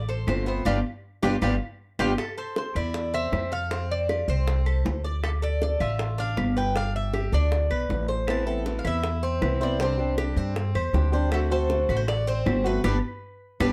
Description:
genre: latin, Cuban son and guajira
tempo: 158 BPM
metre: 4/4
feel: straight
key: unclear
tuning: A4 = 441 Hz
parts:
  - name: Cuban tres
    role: arpeggios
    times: 0.0-13.7 s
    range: B3 to D5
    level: -35 LUFS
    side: equal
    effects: none
  - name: upright bass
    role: bass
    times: 0.0-13.7 s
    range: G1 to G2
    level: -28 LUFS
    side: equal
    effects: none
  - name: Cuban tres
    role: melody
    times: 0.1-13.7 s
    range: A4 to A5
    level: -32 LUFS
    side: equal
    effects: none
  - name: bongos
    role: percussion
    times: 0.1-13.7 s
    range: none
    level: -35 LUFS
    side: equal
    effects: none
  - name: fingerpicked acoustic archtop guitar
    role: accompaniment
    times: 0.3-2.1, 8.3-13.7 s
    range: C3 to G4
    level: -32 LUFS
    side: equal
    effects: none
  - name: claves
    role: percussion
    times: 0.3-13.7 s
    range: none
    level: -40 LUFS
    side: equal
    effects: none
room: light reverb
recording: dark, warm production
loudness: -26 LUFS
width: mono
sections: 0.0-2.2 A section; 2.2-13.7 B section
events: band accent 0.7-2.2, 12.8-13.7; drum fill 1.0-2.2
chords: 0.0 Dm7; 0.7 G7; 2.2 Am; 3.7 F; 5.2 Dm; 6.8 G; 8.3 Amadd9; 9.8 Csus2; 11.3 D7; 12.8 G

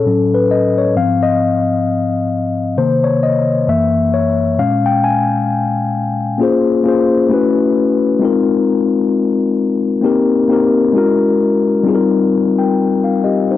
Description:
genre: R&B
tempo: 66 BPM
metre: 4/4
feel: swing 58% on 16ths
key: unclear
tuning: A4 = 440 Hz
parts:
  - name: mellow tine electric piano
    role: solo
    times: 0.0-13.6 s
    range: Gb2 to Ab5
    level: -12 LUFS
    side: left 3 dB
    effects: medium stereo tremolo, cassette tape
room: digital ambience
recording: home recording on cassette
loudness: -12 LUFS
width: side -13 dB against mid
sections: 0.0-6.4 A section; 6.4-13.6 B section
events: tine electric piano solo 0.0-6.4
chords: 0.0 A6; 0.9 Ab6; 2.8 Cm7; 3.7 Gb7; 4.6 Bbm7; 6.4 Bbm9; 7.3 A69; 8.2 Ab69; 10.0 Cm7; 10.9 Gb9; 11.8 F9sus4

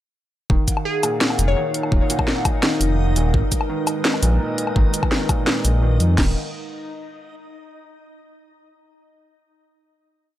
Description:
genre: half-time drum and bass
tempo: 169 BPM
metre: 4/4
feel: half-time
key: Eb minor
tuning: A4 = 440 Hz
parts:
  - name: dark analog pad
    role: sustained chords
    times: 0.7-6.3 s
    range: Ab3 to Gb5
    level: -28 LUFS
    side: equal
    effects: chorus, sidechain pumping
  - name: felt-muted upright piano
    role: arpeggios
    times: 0.5-6.3 s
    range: Bb2 to Eb3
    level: -28 LUFS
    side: right 2 dB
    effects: vintage 12-bit sampler grit, analog delay
  - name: dark detuned saw bass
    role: bass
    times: 0.5-6.3 s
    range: Eb1 to F2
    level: -18 LUFS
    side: equal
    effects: none
  - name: drum and bass drum kit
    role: drums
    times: 0.5-6.3 s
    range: crash cymbal, kick drum, snare drum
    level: -20 LUFS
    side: equal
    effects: overdrive
  - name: backwards swelling texture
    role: texture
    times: 1.9-6.2 s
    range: Eb4 to Eb5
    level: -32 LUFS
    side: left 2 dB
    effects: built-in reverb
  - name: drum and bass drum kit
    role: drums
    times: 0.7-6.1 s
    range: hi-hat, shaker, snare drum, woodblock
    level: -21 LUFS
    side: left 1 dB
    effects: overdrive
  - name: glassy wavetable pluck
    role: melody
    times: 0.9-1.7 s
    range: Ab4 to Db5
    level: -26 LUFS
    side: left 2 dB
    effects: chorus, tape echo
room: little or no reverb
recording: dry, gritty hardware recording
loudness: -17 LUFS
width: side -13 dB against mid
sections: 0.5-6.2 drop; 6.2-7.6 final chord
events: drop 0.5-6.2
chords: 0.5 Ebmadd9; 3.3 Abm; 6.2 Ebmadd9

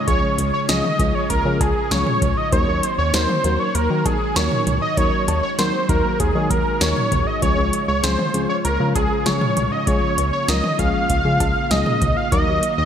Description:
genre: synth-pop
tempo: 98 BPM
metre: 4/4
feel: straight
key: Db major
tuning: A4 = 442 Hz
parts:
  - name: wide unison lead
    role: melody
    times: 0.0-12.9 s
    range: Ab4 to F5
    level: -21 LUFS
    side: right 1 dB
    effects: digital delay
  - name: string machine, full ensemble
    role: sustained chords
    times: 0.0-12.9 s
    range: Db3 to Gb4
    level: -28 LUFS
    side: equal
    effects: ensemble chorus
  - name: mellow FM electric piano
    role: accompaniment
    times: 0.1-12.6 s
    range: F3 to Db5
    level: -25 LUFS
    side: left 3 dB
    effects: chorus
  - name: chorused synth bass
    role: bass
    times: 0.1-12.9 s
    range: C2 to Eb3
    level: -23 LUFS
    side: equal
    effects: none
  - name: electro analog drum machine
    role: drums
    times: 0.1-12.8 s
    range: cowbell, hi-hat, kick drum, snare drum, toms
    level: -22 LUFS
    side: equal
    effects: overdrive, gated reverb
room: moderate lush hall reverb, RT60 2.3 s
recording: bright 1980s-style digital production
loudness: -17 LUFS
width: side -8 dB against mid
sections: 0.0-12.9 A section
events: none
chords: 0.0 Db; 2.5 Ebm; 7.4 Db; 12.3 Ebm

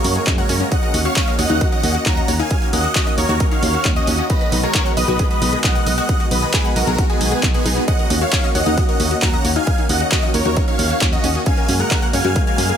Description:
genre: uplifting trance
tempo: 134 BPM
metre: 4/4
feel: straight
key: Eb minor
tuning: A4 = 439 Hz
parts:
  - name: big supersaw lead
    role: melody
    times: 0.0-12.8 s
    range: B3 to Bb5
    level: -21 LUFS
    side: right 1 dB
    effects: phaser, sidechain pumping, ping-pong delay
  - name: lush unison pad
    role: sustained chords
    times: 0.0-12.7 s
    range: Db3 to Gb4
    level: -24 LUFS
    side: equal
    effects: chorus, sidechain pumping
  - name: analog pluck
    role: arpeggios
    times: 0.0-12.8 s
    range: Db4 to Gb5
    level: -27 LUFS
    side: left 5 dB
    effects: chorus, sidechain pumping, ping-pong delay
  - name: solid FM bass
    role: bass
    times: 0.0-12.7 s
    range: B1 to Gb2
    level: -21 LUFS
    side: equal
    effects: sidechain pumping
  - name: punchy analog drum machine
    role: drums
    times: 0.0-12.8 s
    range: handclaps, hi-hat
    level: -23 LUFS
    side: equal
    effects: none
  - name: electronic kick drum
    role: drums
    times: 0.3-12.4 s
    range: none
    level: -19 LUFS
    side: equal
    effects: none
room: little or no reverb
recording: none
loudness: -15 LUFS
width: side -8 dB against mid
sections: 0.0-12.8 A section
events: none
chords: 0.0 Gbadd9; 0.7 Ebm7; 4.3 B6; 7.9 Ebm7; 11.5 Gbadd9

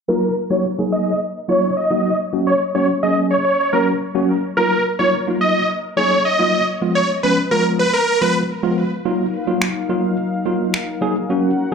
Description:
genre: dance-pop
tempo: 107 BPM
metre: 4/4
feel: straight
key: Eb minor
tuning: A4 = 444 Hz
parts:
  - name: supersaw chords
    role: melody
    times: 0.1-8.3 s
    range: Bb4 to Eb5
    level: -18 LUFS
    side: right 1 dB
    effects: low-pass filter, slapback echo, tape echo
  - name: tine electric piano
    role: accompaniment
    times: 0.1-11.7 s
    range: F3 to Ab4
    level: -19 LUFS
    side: equal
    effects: overdrive, medium stereo tremolo, low-pass filter, slapback echo
  - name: warm analog pad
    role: sustained chords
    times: 9.1-11.7 s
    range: Gb3 to Gb5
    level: -23 LUFS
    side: left 2 dB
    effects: chorus
  - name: electronic finger snaps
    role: drums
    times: 9.6-10.9 s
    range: none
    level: -22 LUFS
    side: equal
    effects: slapback echo
room: wet club reverb, RT60 0.5 s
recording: live gig heard through the venue's PA, club reverb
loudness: -16 LUFS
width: side -6 dB against mid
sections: 0.1-9.1 A section; 9.1-11.7 B section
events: filter sweep 0.1-9.1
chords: 0.1 Ebmadd9; 2.3 Gb; 4.6 Ebmadd9; 6.8 Fdim; 9.1 Ebmadd9

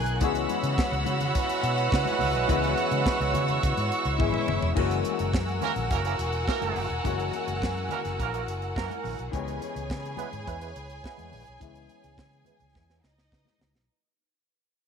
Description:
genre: disco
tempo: 105 BPM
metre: 4/4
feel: straight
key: C# dorian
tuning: A4 = 440 Hz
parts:
  - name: rich studio violin section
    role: second line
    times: 0.0-13.9 s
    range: D#4 to G#5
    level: -33 LUFS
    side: equal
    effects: none
  - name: clear concert grand piano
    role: accompaniment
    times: 0.0-13.9 s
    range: E3 to B4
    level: -33 LUFS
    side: left 15 dB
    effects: low-pass filter
  - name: rich studio string section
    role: sustained chords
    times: 0.0-13.9 s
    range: A#4 to F#6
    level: -33 LUFS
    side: right 3 dB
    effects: low-pass filter
  - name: fingered electric bass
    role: bass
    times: 0.0-13.9 s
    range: E1 to C#3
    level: -31 LUFS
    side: equal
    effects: none
  - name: tight funk drum kit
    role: drums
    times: 0.1-13.9 s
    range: crash cymbal, hi-hat, kick drum, snare drum, toms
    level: -30 LUFS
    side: equal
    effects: none
  - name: congas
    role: percussion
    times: 0.2-13.7 s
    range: none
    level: -40 LUFS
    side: left 12 dB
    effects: none
  - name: warm horn section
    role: stabs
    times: 1.4-13.7 s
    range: E3 to B4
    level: -33 LUFS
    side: right 13 dB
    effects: low-pass filter, tape echo
room: light reverb, small room ambience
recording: 1960s-style stereo with parts hard left and right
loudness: -25 LUFS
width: side -6 dB against mid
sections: 0.0-4.8 A section; 4.8-13.9 B section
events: drum fill 4.2-4.8, 12.8-13.9; fade-out 4.8-13.9; filter sweep 4.8-13.9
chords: 0.2 C#m7; 4.8 F#9; 9.3 C#m7

